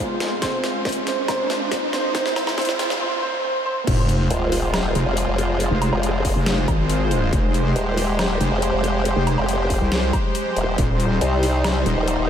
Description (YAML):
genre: heavy wobble dubstep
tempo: 139 BPM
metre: 4/4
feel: half-time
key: F minor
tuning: A4 = 440 Hz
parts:
  - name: supersaw pad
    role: sustained chords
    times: 0.0-12.3 s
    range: G3 to C5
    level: -25 LUFS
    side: equal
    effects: sidechain pumping, low-pass filter
  - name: riser and sub drop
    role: sound effects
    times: 0.0-5.6 s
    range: none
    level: -28 LUFS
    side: equal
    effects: none
  - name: dubstep drum kit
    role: drums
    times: 0.2-12.2 s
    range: crash cymbal, hi-hat, snare drum, woodblock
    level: -27 LUFS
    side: equal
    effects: overdrive, high-pass filter on hats, high-pass filter on snare, high-pass filter on perc, high-pass filter on cymbals
  - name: clear concert grand piano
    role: melody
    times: 0.4-3.9 s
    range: C4 to C5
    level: -27 LUFS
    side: right 2 dB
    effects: ping-pong delay
  - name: electronic kick drum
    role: drums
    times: 0.4-10.9 s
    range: none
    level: -24 LUFS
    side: equal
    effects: distortion
  - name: wobble bass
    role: bass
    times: 3.9-12.0 s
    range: Eb1 to C2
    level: -20 LUFS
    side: equal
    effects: chorus, overdrive
  - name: formant-sweep wobble bass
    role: bass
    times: 4.3-12.3 s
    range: Eb1 to C2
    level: -21 LUFS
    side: equal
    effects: chorus, overdrive
room: moderate huge ambient reverb, RT60 7.5 s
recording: dreamy mix soaked in reverb, high-pass filter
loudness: -18 LUFS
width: side -9 dB against mid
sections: 0.0-3.9 A section; 3.9-12.3 B section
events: build-up 0.0-3.9; drum fill 0.0-3.0; riser 0.0-3.0; filter sweep on supersaw synth 0.0-3.9; drop 3.9-12.3; impact 3.9-5.6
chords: 0.0 Fm; 10.8 Eb6